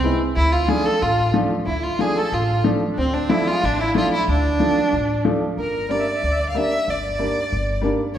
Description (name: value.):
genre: klezmer.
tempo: 92 BPM.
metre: 2/4.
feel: straight.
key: D minor.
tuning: A4 = 440 Hz.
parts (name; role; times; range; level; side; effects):
rich violin; melody; 0.0-8.2 s; C4 to F5; -22 LUFS; right 1 dB; none.
clear upright piano; accompaniment; 0.0-8.0 s; F3 to E4; -23 LUFS; left 1 dB; none.
upright bass; bass; 0.0-7.9 s; G1 to D2; -25 LUFS; equal; none.
accordion; second line; 0.4-8.2 s; C4 to E5; -27 LUFS; right 2 dB; none.
room: wet recital hall reverb, RT60 1.8 s.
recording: recorded in a church or concert hall.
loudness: -18 LUFS.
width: side -10 dB against mid.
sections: 0.0-5.6 A section; 5.6-8.2 B section.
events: none.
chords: 0.4 Dm; 5.6 Gm.